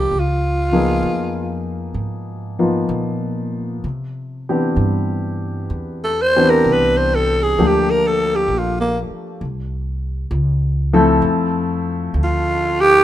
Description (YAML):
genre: jazz ballad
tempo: 65 BPM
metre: 4/4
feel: swing 67% on 8ths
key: unclear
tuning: A4 = 440 Hz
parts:
  - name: growling alto saxophone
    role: melody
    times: 0.0-13.0 s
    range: Bb3 to C5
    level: -16 LUFS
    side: right 1 dB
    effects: none
  - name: dark concert grand piano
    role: accompaniment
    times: 0.0-13.0 s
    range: E3 to A4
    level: -19 LUFS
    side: left 2 dB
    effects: none
  - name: upright bass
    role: bass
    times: 0.0-13.0 s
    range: Bb1 to C3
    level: -22 LUFS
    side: equal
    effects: none
room: light reverb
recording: minimal, uncompressed stereo recording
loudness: -16 LUFS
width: side -12 dB against mid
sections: 0.0-13.0 A section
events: alto saxophone solo 0.0-13.0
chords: 0.1 C#13; 3.8 Cmaj7; 7.6 Gm7; 9.4 C; 11.2 Fmaj7